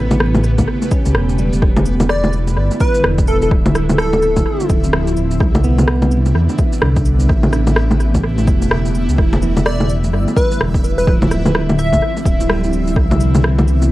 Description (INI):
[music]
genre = future garage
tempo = 127 BPM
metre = 4/4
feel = swing 60% on 16ths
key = E phrygian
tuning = A4 = 440 Hz
[part]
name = ethereal airy pad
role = sustained chords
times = 0.0-13.9 s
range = C3 to G4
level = -22 LUFS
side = right 1 dB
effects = ensemble chorus, built-in reverb, sidechain pumping
[part]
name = dark detuned saw bass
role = bass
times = 0.0-13.9 s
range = D1 to E2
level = -16 LUFS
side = equal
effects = sidechain pumping
[part]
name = backwards swelling texture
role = texture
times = 0.0-13.9 s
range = B3 to E5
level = -29 LUFS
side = equal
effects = built-in reverb
[part]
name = electronic bongos, shaker, rim click and cabasa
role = drums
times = 0.1-13.9 s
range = none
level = -18 LUFS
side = equal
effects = overdrive, vintage 12-bit sampler grit, analog delay
[part]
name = electronic kick drum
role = drums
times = 0.6-13.1 s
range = none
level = -16 LUFS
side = equal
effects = overdrive, vintage 12-bit sampler grit
[part]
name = clean electric guitar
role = accompaniment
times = 0.9-1.8, 5.6-13.9 s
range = D3 to C#4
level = -25 LUFS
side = right 2 dB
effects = wide subtle chorus, sidechain pumping, analog delay
[part]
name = plucky unison lead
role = melody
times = 2.1-4.7, 9.7-12.2 s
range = A4 to E5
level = -20 LUFS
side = equal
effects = analog delay
[sound]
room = little or no reverb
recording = echo-heavy mix, vinyl crackle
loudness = -12 LUFS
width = side -16 dB against mid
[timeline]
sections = 0.0-13.9 A section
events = none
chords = 0.0 A9; 1.6 Em7; 3.5 Dm9; 5.4 Cmaj9; 7.3 A9; 9.2 Em7; 11.1 Dm9; 13.0 Cmaj9